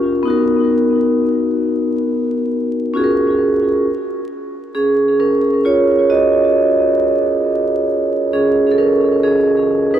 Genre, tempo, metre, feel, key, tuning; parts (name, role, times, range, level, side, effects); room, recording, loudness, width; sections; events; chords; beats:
hip hop; 67 BPM; 4/4; swing 56% on 16ths; Eb minor; A4 = 442 Hz
vibraphone with medium hard mallets; solo; 0.0-10.0 s; B3 to Eb5; -13 LUFS; right 1 dB; cassette tape, low-pass filter, tape echo
moderate echo chamber reverb, RT60 1.4 s, small room ambience; echo-heavy mix, vinyl crackle; -13 LUFS; side -10 dB against mid
0.0-3.8 A section; 3.8-10.0 B section
vibraphone solo 3.8-10.0
0.3 Bmaj7; 3.0 Gbmaj7/Db; 3.8 Ebm9
| 0.26 1.16 2.06 2.95 | 3.85 4.74 5.64 6.53 | 7.43 8.32 9.22